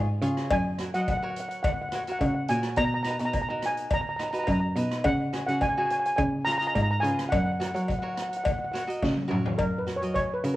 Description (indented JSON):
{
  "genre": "calypso",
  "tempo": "106 BPM",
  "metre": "4/4",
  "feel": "straight",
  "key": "F# major",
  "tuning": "A4 = 438 Hz",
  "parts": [
    { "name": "cavaquinho", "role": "accompaniment", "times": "0.0-10.6 s", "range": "D#4 to D#5", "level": "-35 LUFS", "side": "right 1 dB", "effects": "none" },
    { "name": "clear cello", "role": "bass", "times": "0.0-10.6 s", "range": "F#2 to F#3", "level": "-28 LUFS", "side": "equal", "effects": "none" },
    { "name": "street-band drum kit", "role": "drums", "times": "0.2-10.6 s", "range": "hi-hat, kick drum, rim click, snare drum, toms", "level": "-33 LUFS", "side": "equal", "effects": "cassette tape" },
    { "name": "steel pan", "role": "melody", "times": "0.5-10.6 s", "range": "A#4 to A#5", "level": "-29 LUFS", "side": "equal", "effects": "cassette tape" },
    { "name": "cowbell", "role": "percussion", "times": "0.5-10.3 s", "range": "none", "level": "-32 LUFS", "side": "left 4 dB", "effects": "none" }
  ],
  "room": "light reverb, studio reverb",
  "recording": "home recording on cassette",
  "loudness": "-24 LUFS",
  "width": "side -16 dB against mid",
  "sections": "0.0-9.6 A section",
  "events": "drum fill 9.0-9.6",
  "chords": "0.0 C#; 0.5 F#; 2.8 Bmaj7; 5.0 C#sus4; 6.2 C#7; 7.3 F#",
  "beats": "| 0.51 1.08 1.64 2.21 | 2.78 3.34 3.91 4.48 | 5.04 5.61 6.18 6.75 | 7.32 7.88 8.45 9.02 | 9.59 10.16"
}